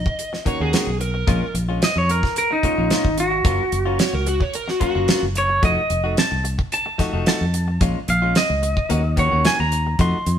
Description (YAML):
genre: straight-eighth soul blues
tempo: 110 BPM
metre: 4/4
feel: straight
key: Bb minor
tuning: A4 = 441 Hz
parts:
  - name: overdriven slide guitar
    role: second line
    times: 0.0-5.2 s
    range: Gb4 to Eb5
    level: -25 LUFS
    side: equal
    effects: none
  - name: fingered electric bass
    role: bass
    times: 0.0-10.4 s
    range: F1 to F2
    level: -22 LUFS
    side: equal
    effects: none
  - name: direct-recorded clean electric guitar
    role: stabs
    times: 0.1-10.3 s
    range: Bb2 to Gb4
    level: -28 LUFS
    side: left 4 dB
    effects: none
  - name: damped 70s drum kit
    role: drums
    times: 0.1-10.4 s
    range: hi-hat, kick drum, snare drum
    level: -21 LUFS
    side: right 1 dB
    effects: none
  - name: electric guitar through a small old amp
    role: melody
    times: 1.8-10.4 s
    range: Eb4 to C6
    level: -21 LUFS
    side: right 1 dB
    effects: none
room: moderate stone room reverb, RT60 1.0 s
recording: band playing live in one room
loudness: -17 LUFS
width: side -9 dB against mid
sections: 0.0-10.4 A section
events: none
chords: 0.0 Ebm7; 1.3 Bbm7; 3.5 Gbmaj7; 5.6 F7b9; 7.8 Bbm7; 8.9 Ebm7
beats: 0.19 0.73 | 1.28 1.82 2.36 2.91 | 3.45 4.00 4.54 5.09 | 5.63 6.18 6.72 7.27 | 7.81 8.36 8.90 9.45 | 9.99